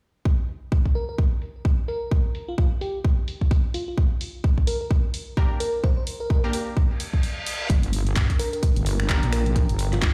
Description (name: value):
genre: bass house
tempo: 129 BPM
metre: 4/4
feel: swing 58% on 16ths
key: G minor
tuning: A4 = 440 Hz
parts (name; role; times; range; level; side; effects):
- electronic kick drum; drums; 0.3-10.1 s; none; -23 LUFS; equal; none
- house drum kit; drums; 0.5-10.1 s; finger snaps, handclaps, hi-hat; -35 LUFS; equal; low-pass filter on hats, low-pass filter on snare
- bell-like FM electric piano; melody; 1.0-10.1 s; F4 to C5; -34 LUFS; equal; chorus, tremolo, delay
- orchestra-hit-like synth stab; stabs; 5.4-9.2 s; Bb3 to Bb4; -36 LUFS; equal; built-in reverb, sidechain pumping, delay
- reverse cymbal; sound effects; 7.0-7.7 s; none; -34 LUFS; equal; none
- wobble bass; bass; 7.7-10.1 s; G1 to G2; -25 LUFS; equal; chorus, tube saturation, sidechain pumping
- warbly tape-like pad; texture; 7.7-10.1 s; D4 to Bb5; -38 LUFS; equal; chorus, built-in reverb, sidechain pumping
room: little or no reverb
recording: played on a big sound system in a bare room, stone room reverb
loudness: -24 LUFS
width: mono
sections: 0.3-7.7 A section; 7.7-10.1 B section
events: reverse cymbal 7.0-7.7; break 7.2-7.7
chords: 0.3 Gm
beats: | 0.26 0.72 1.19 1.65 | 2.12 2.58 3.05 3.51 | 3.98 4.44 4.91 5.37 | 5.84 6.30 6.77 7.23 | 7.70 8.16 8.63 9.09 | 9.56 10.02